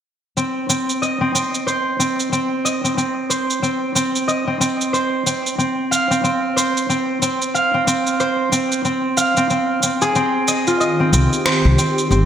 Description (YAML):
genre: organic downtempo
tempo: 92 BPM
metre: 4/4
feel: swing 60% on 16ths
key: C minor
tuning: A4 = 440 Hz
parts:
  - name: concert harp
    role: arpeggios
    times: 0.4-12.3 s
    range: C4 to F5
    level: -17 LUFS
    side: equal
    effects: low-pass filter, digital delay
  - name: electronic shaker and finger snaps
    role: drums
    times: 0.4-12.3 s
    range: none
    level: -22 LUFS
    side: right 2 dB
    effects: studio reverb, gated reverb
  - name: warm analog pad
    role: sustained chords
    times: 10.8-12.3 s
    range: Eb3 to G4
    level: -20 LUFS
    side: left 1 dB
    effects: chorus
  - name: upright bass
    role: bass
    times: 11.1-12.3 s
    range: G1 to C2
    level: -14 LUFS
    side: left 1 dB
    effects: tube saturation
room: wet plate reverb, RT60 1.7 s, small room ambience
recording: bright 1980s-style digital production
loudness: -16 LUFS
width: side -9 dB against mid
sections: 0.4-12.3 A section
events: none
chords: 0.4 Cm; 5.6 Fm7; 10.8 Cm